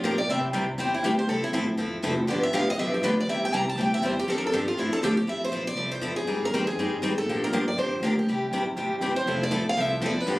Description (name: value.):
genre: acoustic string swing (jazz manouche).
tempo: 241 BPM.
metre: 4/4.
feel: swing 57% on 8ths.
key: F major.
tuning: A4 = 440 Hz.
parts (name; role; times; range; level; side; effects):
picked steel-string acoustic guitar; melody; 0.0-10.4 s; E4 to Bb5; -28 LUFS; equal; none.
picked steel-string acoustic guitar; accompaniment; 0.0-10.4 s; C3 to A4; -28 LUFS; left 1 dB; none.
upright bass; bass; 0.0-10.4 s; E1 to C3; -30 LUFS; equal; none.
picked steel-string acoustic guitar; accompaniment; 1.3-5.1, 9.3-10.4 s; C3 to A4; -34 LUFS; right 2 dB; none.
room: moderate studio reverb, RT60 0.5 s.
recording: recorded on a phone in the room, club reverb.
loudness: -23 LUFS.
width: side -19 dB against mid.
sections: 0.0-5.3 A section; 5.3-10.4 B section.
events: steel-string acoustic guitar solo 0.0-5.3.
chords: 0.3 C; 1.3 Fmaj7; 2.3 G7; 3.3 C; 4.3 F6; 5.3 Fmaj7; 6.3 Abmaj7; 7.3 Bb6; 8.3 C; 9.3 Fmaj7.